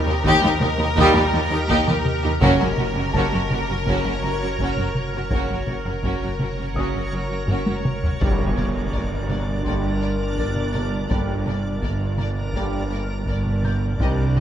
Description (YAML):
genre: cinematic, suspense film score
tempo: 83 BPM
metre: 4/4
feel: straight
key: G harmonic minor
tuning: A4 = 440 Hz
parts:
  - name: rich symphonic violin section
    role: melody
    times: 0.0-14.4 s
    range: Bb4 to Eb5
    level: -30 LUFS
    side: left 2 dB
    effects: none
  - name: backwards swelling texture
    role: sustained chords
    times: 0.0-14.4 s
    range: D4 to Eb5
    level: -30 LUFS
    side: equal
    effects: built-in reverb
  - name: saturated sub bass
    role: drone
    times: 0.0-14.4 s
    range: F#1 to Eb2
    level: -29 LUFS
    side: equal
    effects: none
  - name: dark grand piano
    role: texture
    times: 0.0-14.4 s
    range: C4 to G6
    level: -37 LUFS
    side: left 3 dB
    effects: none
  - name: warm symphonic violin section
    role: second line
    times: 0.1-14.4 s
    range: F#4 to Bb4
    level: -27 LUFS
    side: left 2 dB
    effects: none
  - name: rich symphonic viola section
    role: accompaniment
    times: 0.1-14.4 s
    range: Bb3 to Eb4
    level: -30 LUFS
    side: right 2 dB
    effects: none
  - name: rich symphonic cello section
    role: bass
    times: 0.1-14.4 s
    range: C2 to G2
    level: -27 LUFS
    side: right 1 dB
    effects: none
  - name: solo taiko drums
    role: drums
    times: 0.2-14.4 s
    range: none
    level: -27 LUFS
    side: equal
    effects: none
  - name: clear symphonic double bass section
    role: bass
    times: 0.3-14.4 s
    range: F#1 to Eb2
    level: -27 LUFS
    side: right 2 dB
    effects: none
  - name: clear French horn section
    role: sustained chords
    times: 1.0-14.3 s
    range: Bb3 to G4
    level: -32 LUFS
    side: left 5 dB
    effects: none
  - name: clear trombone section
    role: sustained chords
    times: 1.0-14.3 s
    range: Bb2 to G3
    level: -30 LUFS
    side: right 4 dB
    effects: none
  - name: impact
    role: sound effects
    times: 8.2-11.1 s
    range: none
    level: -29 LUFS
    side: equal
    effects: none
room: moderate concert hall reverb, RT60 2.5 s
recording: none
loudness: -19 LUFS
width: side -10 dB against mid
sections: 0.0-8.2 A section; 8.2-14.4 B section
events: drum fill 7.5-8.2; impact 8.2-11.1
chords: 0.0 Eb; 2.4 F#; 8.2 Gm